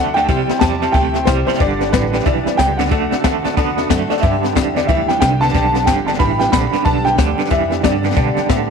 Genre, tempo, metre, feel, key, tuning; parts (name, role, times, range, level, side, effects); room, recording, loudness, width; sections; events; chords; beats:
rockabilly; 183 BPM; 4/4; swing 62% on 8ths; G major; A4 = 441 Hz
dark upright piano; melody; 0.0-8.4 s; B4 to B5; -19 LUFS; equal
picked steel-string acoustic guitar; accompaniment; 0.0-8.7 s; G2 to A4; -25 LUFS; left 12 dB
tack piano; accompaniment; 0.0-8.6 s; A4 to A5; -27 LUFS; left 11 dB
twangy electric guitar; riff; 0.0-8.7 s; G2 to B3; -19 LUFS; right 15 dB; tremolo
upright bass; bass; 0.0-8.7 s; G1 to B2; -22 LUFS; equal
jazz brush drum kit; drums; 0.2-8.6 s; hi-hat, kick drum, snare drum; -19 LUFS; left 4 dB
light reverb, small room ambience; 1960s-style stereo with parts hard left and right; -13 LUFS; side -6 dB against mid
0.0-4.2 A section; 4.2-8.7 A section
0.3 C; 1.6 G; 2.9 D; 4.2 G
| 0.29 0.62 0.95 1.27 | 1.60 1.93 2.26 2.59 | 2.92 3.25 3.58 3.90 | 4.23 4.56 4.89 5.22 | 5.54 5.87 6.20 6.53 | 6.86 7.18 7.51 7.84 | 8.16 8.49